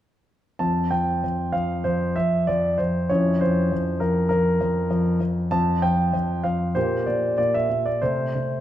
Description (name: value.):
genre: classical-period piano sonatina.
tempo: 97 BPM.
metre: 4/4.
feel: rubato.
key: F major.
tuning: A4 = 440 Hz.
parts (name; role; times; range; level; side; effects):
warm concert grand piano; solo; 0.6-8.6 s; F2 to A5; -20 LUFS; equal; none.
room: moderate recital hall reverb, RT60 1.7 s.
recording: dark, warm production.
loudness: -20 LUFS.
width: side -12 dB against mid.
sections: 0.6-8.6 A section.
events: none.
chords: 0.6 F5; 3.1 Bbmadd9/F; 5.5 F5; 6.8 Gm/Bb; 8.0 Am/C.